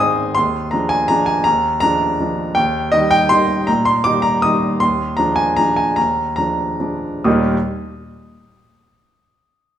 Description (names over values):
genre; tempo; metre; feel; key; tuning
classical, piano waltz; 125-169 BPM; 3/4; rubato; Eb major; A4 = 440 Hz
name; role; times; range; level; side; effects
warm grand piano; solo; 0.0-7.6 s; Eb2 to Eb6; -14 LUFS; equal; none
room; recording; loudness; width
moderate recital hall reverb, RT60 1.4 s; recorded in a church or concert hall; -14 LUFS; side -10 dB against mid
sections
0.0-7.3 A section; 7.3-8.5 B section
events
slowing down 4.2-7.3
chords
0.4 Bb7/Eb; 2.6 Eb; 4.8 Bb7/Eb; 7.3 Eb